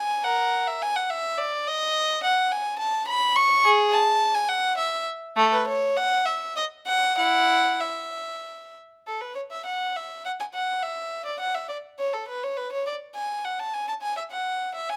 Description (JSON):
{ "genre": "classical, baroque-style suite movement for unaccompanied violin", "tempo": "94-108 BPM", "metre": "3/4", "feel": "rubato", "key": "E major", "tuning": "A4 = 441 Hz", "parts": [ { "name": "warm violin", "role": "solo", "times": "0.0-15.0 s", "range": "A3 to C#6", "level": "-25 LUFS", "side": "equal", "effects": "none" } ], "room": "moderate large studio reverb, RT60 1.0 s", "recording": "none", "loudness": "-25 LUFS", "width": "mono", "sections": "0.0-9.1 A section; 9.1-15.0 A section", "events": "none", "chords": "none" }